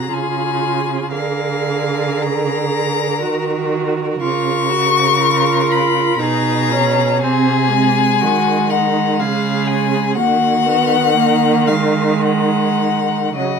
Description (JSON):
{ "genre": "classical, slow romantic movement for string quartet", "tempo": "50-62 BPM", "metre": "3/4", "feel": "rubato", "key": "unclear", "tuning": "A4 = 440 Hz", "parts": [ { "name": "rich violin", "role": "melody", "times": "0.0-13.6 s", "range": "D#5 to C#6", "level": "-18 LUFS", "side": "left 10 dB", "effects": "none" }, { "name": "rich violin", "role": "second line", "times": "0.0-13.6 s", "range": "D#4 to A#4", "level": "-24 LUFS", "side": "left 2 dB", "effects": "none" }, { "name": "rich viola", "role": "accompaniment", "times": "0.0-13.6 s", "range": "F#3 to G#4", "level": "-19 LUFS", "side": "right 4 dB", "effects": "none" }, { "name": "warm cello", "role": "bass", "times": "0.0-13.6 s", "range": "B2 to D#3", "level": "-19 LUFS", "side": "right 4 dB", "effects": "none" } ], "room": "light reverb", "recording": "none", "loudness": "-14 LUFS", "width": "side -6 dB against mid", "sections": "0.0-13.6 A section", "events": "none", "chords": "0.1 C#; 1.1 A#7/D; 3.2 D#m; 4.2 A#m/C#; 6.2 G#m/B; 7.2 Cdim; 9.2 C#; 10.2 D#m" }